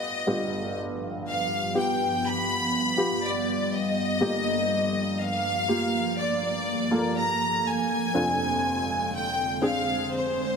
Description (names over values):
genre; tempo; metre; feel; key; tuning
pop; 61 BPM; 4/4; straight; unclear; A4 = 440 Hz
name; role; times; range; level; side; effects
clear studio violin section; melody; 0.0-10.6 s; C5 to B5; -27 LUFS; left 1 dB; none
warm upright piano; accompaniment; 0.0-10.6 s; F1 to Bb4; -29 LUFS; equal; none
ethereal airy pad; sustained chords; 0.9-10.6 s; F2 to C4; -31 LUFS; right 1 dB; ensemble chorus, built-in reverb
room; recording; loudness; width
moderate lush hall reverb, RT60 2.9 s; none; -24 LUFS; side -5 dB against mid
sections
0.0-10.6 A section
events
none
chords
0.0 G7; 4.2 Gm7; 8.1 Dm7b5/F